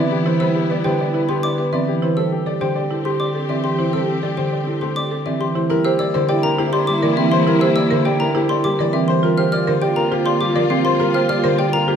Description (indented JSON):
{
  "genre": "classical, minimalist pattern music",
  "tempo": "102 BPM",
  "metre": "3/4",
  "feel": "straight",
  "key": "C mixolydian from 5.7 s",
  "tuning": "A4 = 442 Hz",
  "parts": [
    { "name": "clear baby grand piano", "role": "melody", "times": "0.0-12.0 s", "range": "G4 to D5", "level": "-24 LUFS", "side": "left 8 dB", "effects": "none" },
    { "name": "mellow French horn", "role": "second line", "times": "0.0-11.9 s", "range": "E4 to G4", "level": "-26 LUFS", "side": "right 2 dB", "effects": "none" },
    { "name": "concert harp", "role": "accompaniment", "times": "0.0-12.0 s", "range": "D3 to C4", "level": "-20 LUFS", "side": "right 1 dB", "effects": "none" },
    { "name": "warm studio string section", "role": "sustained chords", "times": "0.0-12.0 s", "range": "Bb3 to G4", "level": "-27 LUFS", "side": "left 2 dB", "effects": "none" },
    { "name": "buzzing marimba with medium hard mallets", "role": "arpeggios", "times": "0.0-12.0 s", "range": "C4 to C5", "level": "-23 LUFS", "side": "right 7 dB", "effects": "none" },
    { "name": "xylophone with rubber mallets", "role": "arpeggios", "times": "0.0-11.9 s", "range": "E5 to F6", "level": "-25 LUFS", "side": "left 2 dB", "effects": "none" }
  ],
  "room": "moderate recital hall reverb, RT60 1.7 s",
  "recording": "none",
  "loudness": "-16 LUFS",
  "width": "side -8 dB against mid",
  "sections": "0.0-5.7 A section; 5.7-12.0 B section",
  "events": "none",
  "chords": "0.0 Cmaj7; 2.2 Am7; 5.7 C7; 9.2 Gm7"
}